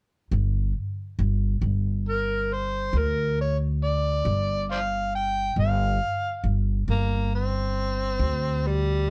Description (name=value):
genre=slow blues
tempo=46 BPM (dotted quarters)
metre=12/8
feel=straight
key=G minor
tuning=A4 = 440 Hz
part: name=upright bass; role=bass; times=0.3-9.1 s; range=G1 to D2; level=-27 LUFS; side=equal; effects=none
part: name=overdriven harmonica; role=melody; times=2.1-6.5 s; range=Bb4 to G5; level=-28 LUFS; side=equal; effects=none
part: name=growling tenor saxophone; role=second line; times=6.9-9.1 s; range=G3 to C4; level=-30 LUFS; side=equal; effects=none
room=light reverb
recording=dark, warm production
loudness=-26 LUFS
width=mono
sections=0.3-9.1 A section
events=none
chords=0.3 G5